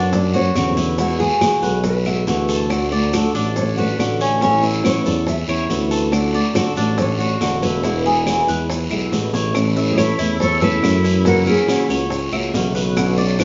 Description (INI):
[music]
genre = latin, Cuban son and guajira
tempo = 140 BPM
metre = 4/4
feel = straight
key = A major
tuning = A4 = 438 Hz
[part]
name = nylon-string guitar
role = melody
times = 0.0-13.4 s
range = G#4 to F#5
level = -25 LUFS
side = equal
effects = none
[part]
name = flamenco guitar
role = accompaniment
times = 0.0-13.4 s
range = B2 to F#4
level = -24 LUFS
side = equal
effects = none
[part]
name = Cuban tres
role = arpeggios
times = 0.0-13.4 s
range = C#4 to E5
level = -26 LUFS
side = equal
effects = none
[part]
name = warm tuba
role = bass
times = 0.0-13.4 s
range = E1 to F#2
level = -23 LUFS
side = equal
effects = none
[part]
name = bongos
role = percussion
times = 0.1-13.4 s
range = none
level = -31 LUFS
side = equal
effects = none
[part]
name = guiro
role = percussion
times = 0.1-13.4 s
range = none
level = -32 LUFS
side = equal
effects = none
[part]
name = maracas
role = percussion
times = 0.1-13.4 s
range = none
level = -40 LUFS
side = equal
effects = none
[part]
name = claves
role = percussion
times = 0.6-13.4 s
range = none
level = -36 LUFS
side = equal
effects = none
[part]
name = bright reedy silver concert flute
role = second line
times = 9.9-13.4 s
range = E4 to A4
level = -26 LUFS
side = equal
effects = none
[sound]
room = wet stone room reverb, RT60 1.3 s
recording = band playing live in one room, nothing above 7.5 kHz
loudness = -18 LUFS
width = mono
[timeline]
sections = 0.0-9.6 A section; 9.6-13.4 A section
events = drum fill 9.1-9.6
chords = 0.0 Bmadd9; 1.0 Eadd9; 2.7 D; 4.4 Aadd9; 6.1 D; 7.8 E; 9.6 A; 11.3 F#7